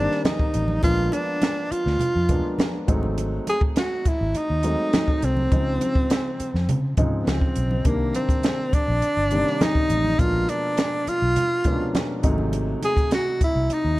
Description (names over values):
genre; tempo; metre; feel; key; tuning
lush 1970s-style soul; 103 BPM; 4/4; straight; unclear; A4 = 440 Hz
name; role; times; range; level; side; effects
breathy tenor saxophone; melody; 0.0-14.0 s; Bb3 to Ab4; -24 LUFS; equal; none
warm grand piano; accompaniment; 0.0-14.0 s; Cb3 to D5; -28 LUFS; left 1 dB; none
vintage muted fingered electric bass; bass; 0.0-14.0 s; G1 to Db3; -24 LUFS; equal; none
compact cocktail drum kit; drums; 0.1-13.8 s; hi-hat, kick drum, snare drum; -24 LUFS; equal; none
congas; percussion; 0.2-13.5 s; none; -31 LUFS; right 2 dB; none
room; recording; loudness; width
little or no reverb; dark, warm production; -20 LUFS; side -18 dB against mid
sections
0.0-14.0 A section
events
none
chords
0.0 Cm9; 0.8 Bb7b9; 2.9 Ab7b9; 5.5 Dbmaj7; 7.9 Cm9; 10.2 Bb7b9; 12.2 Ab7b9